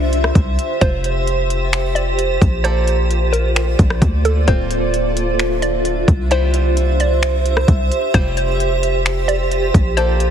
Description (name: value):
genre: hip hop, atmospheric cloud-rap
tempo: 131 BPM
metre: 4/4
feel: half-time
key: unclear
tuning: A4 = 440 Hz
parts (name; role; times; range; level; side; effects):
- hollow square pluck; melody; 0.0-10.3 s; A4 to D5; -23 LUFS; equal; chorus, digital delay
- granular cloud pad; sustained chords; 0.0-10.3 s; D3 to E5; -19 LUFS; right 2 dB; built-in reverb
- warm 808-style bass; bass; 0.0-10.3 s; D1 to D2; -18 LUFS; equal; none
- bluegrass banjo; texture; 0.0-10.3 s; G3 to D5; -31 LUFS; right 2 dB; none
- trap drum kit; drums; 0.1-10.3 s; finger snaps, hi-hat, kick drum, rim click; -18 LUFS; equal; vintage 12-bit sampler grit
room: little or no reverb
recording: heavily compressed radio sound, multiband compression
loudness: -14 LUFS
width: side -9 dB against mid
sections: 0.0-10.3 A section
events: none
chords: 0.0 C; 0.8 Fsus2; 2.6 Bbmaj7; 4.5 Dm7; 6.3 C; 8.1 Fsus2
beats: 0.36 | 0.81 1.27 1.73 2.19 | 2.65 3.10 3.56 4.02 | 4.48 4.94 5.39 5.85 | 6.31 6.77 7.23 7.68 | 8.14 8.60 9.06 9.52 | 9.97